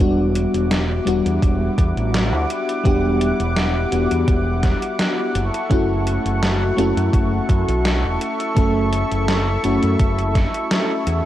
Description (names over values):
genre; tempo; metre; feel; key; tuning
vaporwave; 84 BPM; 4/4; swing 53% on 16ths; E dorian; A4 = 440 Hz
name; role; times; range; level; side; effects
FM electric piano with soft pad layer; accompaniment; 0.0-11.3 s; G3 to A4; -21 LUFS; left 1 dB; tremolo, lush chorus, analog delay
lush unison pad; sustained chords; 0.0-11.3 s; G3 to D6; -25 LUFS; left 1 dB; chorus
growling fingered electric bass; bass; 0.0-11.2 s; E1 to F#2; -21 LUFS; equal; overdrive
gated 80s digital drum machine; drums; 0.0-11.2 s; hi-hat, snare drum; -25 LUFS; equal; gated reverb, gated reverb snare, overdrive
electronic kick drum; drums; 1.4-10.5 s; none; -18 LUFS; equal; overdrive
room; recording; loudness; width
light reverb; worn, warbling old tape, cassette tape, warbly pitch drift; -16 LUFS; side -13 dB against mid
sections
0.0-11.3 A section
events
none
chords
0.0 Em9; 5.4 F#m7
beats
| 0.00 0.71 1.42 2.14 | 2.85 3.57 4.28 5.00 | 5.71 6.42 7.14 7.85 | 8.57 9.28 9.99 10.71